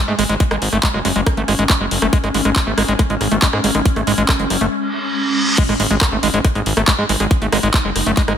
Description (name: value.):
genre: psychedelic trance.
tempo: 139 BPM.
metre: 4/4.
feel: straight.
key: unclear.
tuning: A4 = 439 Hz.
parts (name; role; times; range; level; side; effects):
swarming drone; sustained chords; 0.0-8.4 s; G#3 to D#4; -23 LUFS; left 1 dB; built-in reverb, sidechain pumping.
overdriven acid bass; riff; 0.1-8.3 s; G#3 to A3; -20 LUFS; equal; auto-pan, sidechain pumping, digital delay.
fat analog bass; bass; 0.1-8.3 s; F#1 to G#2; -20 LUFS; equal; none.
techno drum kit; drums; 0.2-8.4 s; crash cymbal, handclaps, hi-hat, rim click; -20 LUFS; equal; overdrive, studio reverb.
electronic kick drum; drums; 0.4-8.3 s; none; -15 LUFS; equal; studio reverb.
reverse cymbal and sub drop; sound effects; 4.9-7.3 s; none; -22 LUFS; right 2 dB; none.
room: light reverb, digital ambience.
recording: none.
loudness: -14 LUFS.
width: side -9 dB against mid.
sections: 0.0-5.6 A section; 5.6-8.4 B section.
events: break 4.7-5.6; reverse cymbal 4.9-5.6; drop 5.6-8.4; impact 5.6-7.3.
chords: 0.0 G#5.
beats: | 0.40 0.83 1.26 1.70 | 2.13 2.56 2.99 3.42 | 3.85 4.29 4.72 5.15 | 5.58 6.01 6.45 6.88 | 7.31 7.74 8.17.